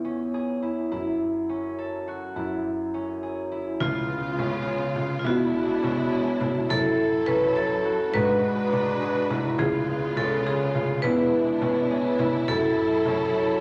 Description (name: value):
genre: contemporary instrumental, chamber music in an uneven meter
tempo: 208 BPM (eighths)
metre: 5/8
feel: straight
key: F# minor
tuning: A4 = 441 Hz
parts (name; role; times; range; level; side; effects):
- concert harp; arpeggios; 0.0-13.6 s; C#4 to A4; -30 LUFS; equal; none
- dark grand piano; bass; 0.0-13.6 s; C#2 to G#2; -32 LUFS; equal; none
- vibraphone with hard mallets; second line; 3.8-13.6 s; E#4 to B4; -28 LUFS; equal; none
- clear studio string section; sustained chords; 3.8-13.6 s; C#3 to B4; -34 LUFS; equal; none
- frame drum; percussion; 3.8-13.3 s; none; -36 LUFS; equal; none
room: wet recital hall reverb, RT60 1.4 s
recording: none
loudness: -25 LUFS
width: mono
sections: 0.0-3.8 A section; 3.8-13.6 A section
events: none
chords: 0.0 E6; 0.9 F#m7; 3.8 C#7; 5.3 E13; 6.7 F#m7; 8.1 G#m7b5; 9.6 C#7; 11.0 E6; 12.5 F#m7